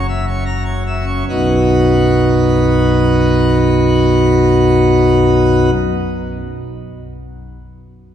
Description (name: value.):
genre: classical, organ toccata.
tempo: free time.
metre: none.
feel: none.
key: B major.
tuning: A4 = 440 Hz.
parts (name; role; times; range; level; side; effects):
pipe organ, plenum; solo; 0.0-5.7 s; F#1 to A#5; -12 LUFS; equal; none.
room: wet church reverb, RT60 3.8 s.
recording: heard from further back in the room.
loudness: -11 LUFS.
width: side -10 dB against mid.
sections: 0.0-1.3 A section; 1.3-8.1 B section.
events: slowing down 0.0-1.3.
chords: 0.0 F#7; 1.3 B.